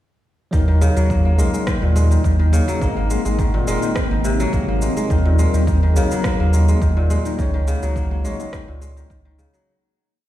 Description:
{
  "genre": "organic downtempo",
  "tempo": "105 BPM",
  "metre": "4/4",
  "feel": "straight",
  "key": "Eb dorian",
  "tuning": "A4 = 444 Hz",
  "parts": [
    { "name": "tine electric piano", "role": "accompaniment", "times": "0.5-9.7 s", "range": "Gb3 to Db5", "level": "-26 LUFS", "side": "left 4 dB", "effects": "medium stereo tremolo, sidechain pumping, ping-pong delay" },
    { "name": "granular cloud pad", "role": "sustained chords", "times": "2.0-9.7 s", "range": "Bb3 to Gb5", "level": "-28 LUFS", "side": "left 1 dB", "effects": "built-in reverb, sidechain pumping" },
    { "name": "kora", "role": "arpeggios", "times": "0.5-10.0 s", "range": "Bb2 to Bb3", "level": "-24 LUFS", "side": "equal", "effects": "ping-pong delay" },
    { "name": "warm sub bass", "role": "bass", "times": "0.5-9.5 s", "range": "Eb1 to Eb2", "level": "-17 LUFS", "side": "equal", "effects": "sidechain pumping" },
    { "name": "electronic kick drum", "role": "drums", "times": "0.5-9.2 s", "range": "none", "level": "-23 LUFS", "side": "equal", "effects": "overdrive" },
    { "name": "electronic shaker and rim click", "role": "drums", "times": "0.5-9.6 s", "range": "none", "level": "-32 LUFS", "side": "right 1 dB", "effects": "overdrive" }
  ],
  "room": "light reverb",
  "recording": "played on a big sound system in a bare room, stone room reverb",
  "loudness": "-16 LUFS",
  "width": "side -13 dB against mid",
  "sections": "0.5-9.7 groove",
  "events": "fade-out 6.6-9.7",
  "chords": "0.5 Ebm; 2.8 Abadd9; 5.1 Ebm; 7.4 Dbsus2"
}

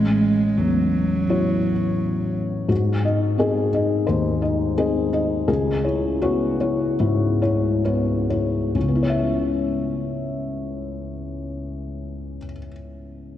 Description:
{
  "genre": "neoclassical piano and strings",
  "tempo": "65-87 BPM",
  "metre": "4/4",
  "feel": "rubato",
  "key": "C# minor",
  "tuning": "A4 = 438 Hz",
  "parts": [
    { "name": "rich cello", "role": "second line", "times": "0.0-2.3 s", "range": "F#3 to G#3", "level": "-22 LUFS", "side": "right 3 dB", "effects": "none" },
    { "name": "felt-muted upright piano", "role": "accompaniment", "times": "0.0-13.4 s", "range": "A1 to E5", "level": "-20 LUFS", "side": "left 2 dB", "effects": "none" }
  ],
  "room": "wet plate reverb, RT60 2.8 s",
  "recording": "dreamy mix soaked in reverb, cassette tape",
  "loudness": "-19 LUFS",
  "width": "side -11 dB against mid",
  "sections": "0.0-2.7 A section; 2.7-8.7 B section; 8.7-12.4 C section",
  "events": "slowing down 1.3-8.7",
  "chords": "0.0 F#m7/A; 2.7 G#7; 5.5 C#m7"
}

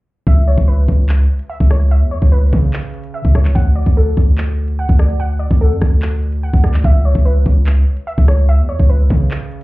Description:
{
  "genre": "hip hop, drill",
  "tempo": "146 BPM",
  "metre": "4/4",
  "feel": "half-time",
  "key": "C# phrygian",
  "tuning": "A4 = 440 Hz",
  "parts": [
    { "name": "warbly dusty pluck", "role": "arpeggios", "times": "0.3-9.6 s", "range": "A4 to F#5", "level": "-25 LUFS", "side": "left 1 dB", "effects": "chorus, digital delay" },
    { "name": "hard-hitting 808-style bass", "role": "bass", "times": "0.3-9.6 s", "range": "C#2 to C#3", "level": "-13 LUFS", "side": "equal", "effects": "none" },
    { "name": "drill drum kit", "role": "drums", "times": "0.3-9.6 s", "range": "handclaps, hi-hat, kick drum, rim click", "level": "-14 LUFS", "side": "equal", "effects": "none" }
  ],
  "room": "digital ambience",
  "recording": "heard muffled through a wall, club reverb, EQ",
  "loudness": "-11 LUFS",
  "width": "side -20 dB against mid",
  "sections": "0.3-9.6 A section",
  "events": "none",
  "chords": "0.3 C#m7; 3.6 D; 6.8 C#m7"
}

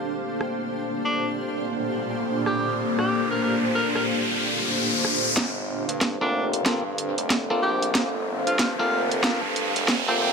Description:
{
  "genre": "glitch hop",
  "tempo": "93 BPM",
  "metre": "4/4",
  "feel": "swing 62% on 16ths",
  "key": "G minor",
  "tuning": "A4 = 440 Hz",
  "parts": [
    { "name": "dark analog pad", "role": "sustained chords", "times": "0.0-10.3 s", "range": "Bb3 to G5", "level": "-29 LUFS", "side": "left 1 dB", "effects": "chorus, sidechain pumping" },
    { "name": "granular cloud pad", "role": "texture", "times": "0.0-10.3 s", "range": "Bb2 to F5", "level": "-30 LUFS", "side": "right 1 dB", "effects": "built-in reverb, sidechain pumping" },
    { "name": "riser", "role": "sound effects", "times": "1.8-10.3 s", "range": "none", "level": "-28 LUFS", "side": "equal", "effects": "none" },
    { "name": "drum and bass drum kit", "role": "drums", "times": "0.4-10.0 s", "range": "hi-hat, rim click, snare drum", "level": "-25 LUFS", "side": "right 1 dB", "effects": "none" },
    { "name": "warm tenor saxophone", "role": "melody", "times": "1.0-10.3 s", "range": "C4 to Bb4", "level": "-29 LUFS", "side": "equal", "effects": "digital delay" },
    { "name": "gritty driven synth bass", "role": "bass", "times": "5.4-10.3 s", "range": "F1 to G2", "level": "-32 LUFS", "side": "equal", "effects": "distortion, high-pass filter" },
    { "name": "electronic kick drum", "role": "drums", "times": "5.4-10.0 s", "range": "none", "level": "-30 LUFS", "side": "equal", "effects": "high-pass filter on kick" },
    { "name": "bright clav", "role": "stabs", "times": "6.2-10.3 s", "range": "Bb3 to A4", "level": "-28 LUFS", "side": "left 1 dB", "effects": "sidechain pumping, digital delay" }
  ],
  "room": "moderate lush hall reverb, RT60 2.0 s",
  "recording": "high-pass filter",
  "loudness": "-22 LUFS",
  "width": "side -5 dB against mid",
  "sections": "0.0-5.4 A section; 5.4-10.3 B section",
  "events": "riser 1.8-5.4, 5.4-10.3; build-up 5.4-10.3; drum fill 5.4-10.3",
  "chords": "0.0 Bbmaj9; 5.4 Gm11"
}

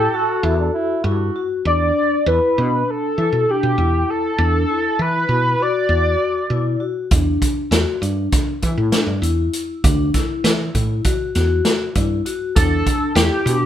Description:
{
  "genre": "progressive instrumental, band music in an uneven meter",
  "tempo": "198 BPM (eighths)",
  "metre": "9/8",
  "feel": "straight",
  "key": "E minor",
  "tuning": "A4 = 440 Hz",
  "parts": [
    { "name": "pulse-width lead", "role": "melody", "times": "0.0-6.8, 12.6-13.7 s", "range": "G4 to D5", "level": "-19 LUFS", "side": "equal", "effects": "chorus" },
    { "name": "breathy flugelhorn", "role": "second line", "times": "0.0-1.5 s", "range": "D4 to G4", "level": "-23 LUFS", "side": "right 3 dB", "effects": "none" },
    { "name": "vibraphone with soft mallets", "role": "arpeggios", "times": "0.0-13.7 s", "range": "D4 to F#4", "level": "-23 LUFS", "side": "left 4 dB", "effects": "none" },
    { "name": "woody fretless electric bass", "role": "bass", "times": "0.0-13.7 s", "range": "D2 to E3", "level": "-20 LUFS", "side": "equal", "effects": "none" },
    { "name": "vintage drum kit", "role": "drums", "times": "7.1-13.6 s", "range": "hi-hat, kick drum, snare drum", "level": "-19 LUFS", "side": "right 1 dB", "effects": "none" }
  ],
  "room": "moderate studio reverb, RT60 0.7 s",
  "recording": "band playing live in one room",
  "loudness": "-16 LUFS",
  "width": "side -10 dB against mid",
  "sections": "0.0-13.7 A section",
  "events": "none",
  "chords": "0.0 Emadd9; 1.7 Gadd9/E (rootless); 7.1 E7sus2; 12.6 Gadd9/E"
}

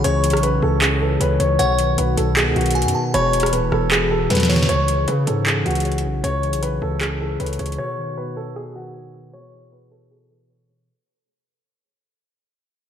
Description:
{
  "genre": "hip hop, trap",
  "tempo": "155 BPM",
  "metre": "4/4",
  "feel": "half-time",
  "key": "C# minor",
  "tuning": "A4 = 440 Hz",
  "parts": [
    { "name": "dark concert grand piano", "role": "melody", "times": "0.0-10.9 s", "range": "F#4 to C#5", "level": "-22 LUFS", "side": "left 1 dB", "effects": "low-pass filter, diffuse ambient delay" },
    { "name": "delicate synth tine bell", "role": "second line", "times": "0.0-4.6 s", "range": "F#5 to C#6", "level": "-29 LUFS", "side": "right 3 dB", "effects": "chorus, diffuse ambient delay" },
    { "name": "mellow tine electric piano", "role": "accompaniment", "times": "0.0-10.9 s", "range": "B2 to C#5", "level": "-23 LUFS", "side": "left 2 dB", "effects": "lush chorus, low-pass filter" },
    { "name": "dark brass ensemble", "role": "sustained chords", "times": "0.0-10.9 s", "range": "D#3 to G#4", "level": "-30 LUFS", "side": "left 2 dB", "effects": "stereo widening, low-pass filter" },
    { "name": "distorted 808-style bass", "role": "bass", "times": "0.0-7.8 s", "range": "D#1 to C#3", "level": "-23 LUFS", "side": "right 1 dB", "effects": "distortion" },
    { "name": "booming analog drum machine", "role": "drums", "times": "0.0-7.8 s", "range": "handclaps, hi-hat, rim click, snare drum", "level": "-22 LUFS", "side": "right 1 dB", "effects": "overdrive" }
  ],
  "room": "wet plate reverb, RT60 2.2 s",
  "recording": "dreamy mix soaked in reverb",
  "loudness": "-17 LUFS",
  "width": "side -9 dB against mid",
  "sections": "0.0-4.7 A section; 4.7-10.9 B section",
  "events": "drum fill 4.3-4.7; fade-out 4.7-10.9; filter sweep 4.7-10.9",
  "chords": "0.0 C#m; 1.6 B; 3.1 E; 4.7 C#m; 7.8 B; 9.3 E"
}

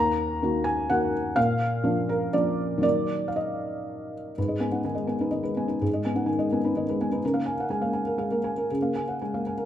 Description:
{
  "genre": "neoclassical minimalist piano",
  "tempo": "116-128 BPM",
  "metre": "3/4",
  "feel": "rubato",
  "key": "unclear",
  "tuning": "A4 = 440 Hz",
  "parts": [
    { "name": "felt-muted upright piano", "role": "solo", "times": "0.0-9.7 s", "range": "Eb2 to Bb5", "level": "-24 LUFS", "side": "equal", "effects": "none" }
  ],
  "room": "moderate recital hall reverb, RT60 1.5 s",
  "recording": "minimal, uncompressed stereo recording",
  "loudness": "-24 LUFS",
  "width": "side -10 dB against mid",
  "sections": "0.0-4.4 A section; 4.4-9.7 B section",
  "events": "none",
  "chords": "0.0 Ebm; 1.4 Bb; 2.8 Ebm; 4.4 Abm; 7.2 Db6"
}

